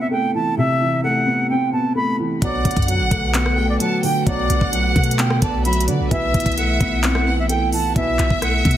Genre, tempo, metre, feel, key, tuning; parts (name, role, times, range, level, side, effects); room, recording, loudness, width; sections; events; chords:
hip hop, trap; 130 BPM; 4/4; half-time; A4 = 440 Hz
silver concert flute; melody; 0.0-8.8 s; D5 to B5; -22 LUFS; right 1 dB
felt-muted upright piano; accompaniment; 0.0-8.8 s; B2 to C4; -22 LUFS; equal
rich studio violin section; second line; 2.4-8.8 s; D5 to A5; -27 LUFS; right 1 dB; ping-pong delay
airy breathy pad; sustained chords; 2.4-8.8 s; D3 to B4; -28 LUFS; equal; chorus
mellow brass ensemble; stabs; 2.4-8.3 s; C2 to F#3; -31 LUFS; right 2 dB; ping-pong delay
clean 808-style bass; bass; 2.4-8.8 s; A1 to D3; -21 LUFS; equal
trap drum kit; drums; 2.4-8.8 s; handclaps, hi-hat, kick drum, rim click; -22 LUFS; equal
small room ambience; dense, heavily limited modern master; -16 LUFS; side -11 dB against mid
0.0-8.8 A section
0.0 Amadd9; 2.4 Bm7; 6.1 Amadd9/B